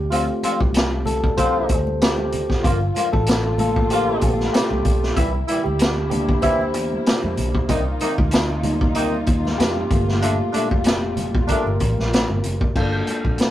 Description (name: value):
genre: lush 1970s-style soul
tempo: 95 BPM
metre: 4/4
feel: swing 54% on 16ths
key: G minor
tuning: A4 = 440 Hz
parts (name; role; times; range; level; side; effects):
- barky tine electric piano; accompaniment; 0.0-13.5 s; E3 to C5; -24 LUFS; left 1 dB; none
- vintage muted fingered electric bass; bass; 0.0-13.4 s; F1 to F2; -25 LUFS; equal; none
- mellow horn section; stabs; 0.1-11.7 s; Bb2 to F4; -22 LUFS; equal; none
- vintage drum kit; drums; 0.1-13.5 s; crash cymbal, hi-hat, kick drum, snare drum; -21 LUFS; equal; none
- congas; percussion; 0.1-13.4 s; none; -32 LUFS; right 2 dB; none
- warm studio string section; sustained chords; 2.6-12.7 s; Bb2 to A4; -31 LUFS; left 2 dB; none
- tambourine; percussion; 2.7-12.6 s; none; -46 LUFS; left 4 dB; none
room: moderate small room reverb, RT60 0.5 s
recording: rough rehearsal-room recording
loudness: -17 LUFS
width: side -13 dB against mid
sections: 0.0-12.8 A section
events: tine electric piano solo 0.0-12.8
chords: 0.0 Dm7; 2.6 Gm9; 5.2 C9; 7.7 F7sus4/C; 9.9 Gm9